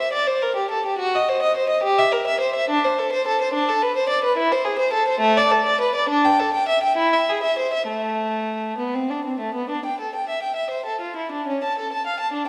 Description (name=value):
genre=classical, baroque-style suite movement for unaccompanied violin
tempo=65-72 BPM (dotted quarters)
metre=6/8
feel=rubato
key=A minor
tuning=A4 = 440 Hz
part: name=warm violin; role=solo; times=0.0-12.5 s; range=A3 to A5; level=-22 LUFS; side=equal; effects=none
room=wet scoring stage reverb, RT60 1.7 s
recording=recorded in a church or concert hall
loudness=-21 LUFS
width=mono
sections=0.0-9.7 A section; 9.7-12.5 A section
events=none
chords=none